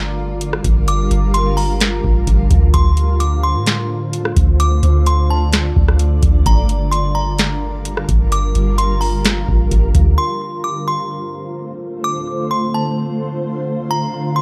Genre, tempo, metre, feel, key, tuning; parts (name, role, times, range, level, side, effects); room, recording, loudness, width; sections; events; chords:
hip hop, atmospheric cloud-rap; 129 BPM; 4/4; half-time; G minor; A4 = 440 Hz
delicate synth tine bell; melody; 0.0-14.4 s; A5 to D6; -25 LUFS; equal; chorus, analog delay
granular cloud pad; sustained chords; 0.0-14.4 s; D3 to D5; -24 LUFS; equal; built-in reverb, sidechain pumping
soft 808-style bass; bass; 0.0-10.2 s; G1 to A2; -18 LUFS; equal
booming analog drum machine; drums; 0.4-10.1 s; hi-hat, kick drum, rim click, snare drum; -18 LUFS; equal
little or no reverb; dry, gritty hardware recording, transformer saturation; -16 LUFS; mono
0.0-10.2 A section; 10.2-14.4 B section
0.0 Gm7; 2.7 Dm7; 6.5 Gm7; 10.2 Dm7; 13.9 Gm7